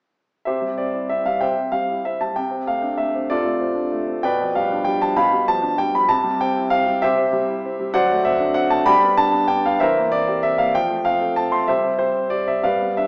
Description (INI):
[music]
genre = classical-period piano sonatina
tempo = 64 BPM (dotted quarters)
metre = 6/8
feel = rubato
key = C major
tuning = A4 = 440 Hz
[part]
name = warm baby grand piano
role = solo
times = 0.5-13.1 s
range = B2 to C6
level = -17 LUFS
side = equal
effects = none
[sound]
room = wet recital hall reverb, RT60 1.7 s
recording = small speaker sound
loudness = -17 LUFS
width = side -35 dB against mid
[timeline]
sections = 0.5-13.1 A section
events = none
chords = 0.5 C; 4.2 G7/B; 6.1 C; 8.0 D7/F#; 8.9 G; 9.8 C7/E; 10.7 F; 11.7 C5/G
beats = | 0.46 1.42 | 2.37 3.31 | 4.24 5.16 | 6.09 7.03 | 7.95 8.88 | 9.81 10.74 | 11.68 12.65